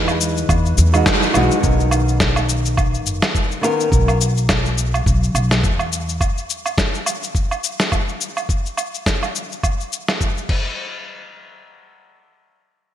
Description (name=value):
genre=sunset chillout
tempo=105 BPM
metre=4/4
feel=swing 57% on 16ths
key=B major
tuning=A4 = 436 Hz
part: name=clear baby grand piano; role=melody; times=0.0-1.0 s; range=B4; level=-36 LUFS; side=equal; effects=none
part: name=flamenco guitar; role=accompaniment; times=0.0-3.9 s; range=D#3 to B4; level=-21 LUFS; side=equal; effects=auto-pan, digital delay
part: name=upright bass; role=bass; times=0.0-6.2 s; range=F#1 to E2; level=-18 LUFS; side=equal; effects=none
part: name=dusty soul sampler-style drum kit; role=drums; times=0.1-10.6 s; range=cabasa, crash cymbal, snare drum, woodblock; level=-21 LUFS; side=equal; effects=gated reverb
part: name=electronic kick drum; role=drums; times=0.5-10.6 s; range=none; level=-20 LUFS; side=equal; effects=none
room=moderate lush hall reverb, RT60 2.2 s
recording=bright 1980s-style digital production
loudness=-16 LUFS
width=side -11 dB against mid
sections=0.0-1.6 A section; 1.6-10.8 B section; 10.8-12.9 C section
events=band accent 1.1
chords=0.0 Emaj9; 1.6 Bmaj9; 5.9 N.C.